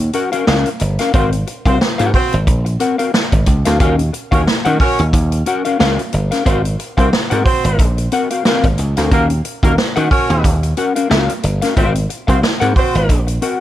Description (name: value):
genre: funk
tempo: 90 BPM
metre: 4/4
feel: swing 56% on 16ths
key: Eb dorian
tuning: A4 = 440 Hz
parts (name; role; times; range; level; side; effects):
- mellow electric guitar; accompaniment; 0.0-13.6 s; C4 to Gb5; -18 LUFS; left 4 dB; analog chorus
- dry thumbed slap bass; bass; 0.0-13.4 s; G1 to Eb3; -16 LUFS; equal; none
- swinging big-band drum kit; drums; 0.1-13.6 s; hi-hat, kick drum, snare drum; -17 LUFS; equal; none
- dark horn section; second line; 1.1-13.2 s; Bb3 to Db5; -20 LUFS; right 2 dB; none
room: little or no reverb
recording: none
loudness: -13 LUFS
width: side -13 dB against mid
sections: 0.0-13.6 A section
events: none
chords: 0.0 Ebm9 (rootless); 1.1 Ab13; 3.8 Ebm9; 6.5 Ab13; 9.1 Ebm9; 11.8 Ab13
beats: 0.47 | 1.14 1.80 2.47 3.13 | 3.80 4.46 5.13 5.79 | 6.46 7.12 7.79 8.45 | 9.11 9.78 10.44 11.10 | 11.76 12.43 13.09